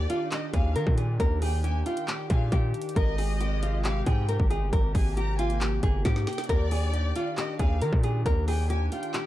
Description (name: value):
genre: hip hop, trap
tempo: 136 BPM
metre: 4/4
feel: half-time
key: Eb major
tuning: A4 = 435 Hz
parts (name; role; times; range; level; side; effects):
- nylon-string guitar; melody; 0.0-9.3 s; F4 to Bb4; -32 LUFS; left 1 dB; low-pass filter
- dark studio violin section; second line; 0.0-9.3 s; D5 to Bb5; -38 LUFS; equal; tape echo
- warm analog pad; sustained chords; 0.0-9.3 s; C3 to G4; -36 LUFS; right 1 dB; chorus
- distorted 808-style bass; bass; 0.0-8.9 s; G1 to Eb3; -27 LUFS; equal; distortion
- trap drum kit; drums; 0.1-9.2 s; handclaps, hi-hat, kick drum, snare drum; -28 LUFS; equal; none
room: little or no reverb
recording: dark, warm production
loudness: -24 LUFS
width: side -14 dB against mid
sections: 0.0-9.3 A section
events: drum fill 6.1-6.5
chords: 0.0 Ebmaj7; 3.0 Abmaj7; 6.5 Ebmaj7